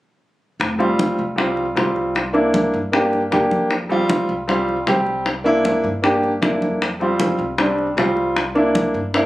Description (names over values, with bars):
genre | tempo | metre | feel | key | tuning
Afro-Cuban jazz | 155 BPM | 4/4 | straight | unclear | A4 = 440 Hz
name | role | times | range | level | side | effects
upright bass | bass | 0.6-9.3 s | F1 to G2 | -30 LUFS | equal | none
bongos | percussion | 0.6-9.3 s | none | -22 LUFS | left 2 dB | none
congas | percussion | 0.6-9.3 s | none | -27 LUFS | equal | none
warm concert grand piano | accompaniment | 0.8-9.3 s | G3 to G4 | -18 LUFS | equal | none
room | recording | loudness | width
light reverb | recorded on a phone in the room, club reverb, compression | -16 LUFS | side -16 dB against mid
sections
0.6-9.3 A section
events
none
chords
0.6 Fsus2; 2.2 C7; 3.7 Fsus2; 5.3 C7; 6.8 Fsus2; 8.4 C7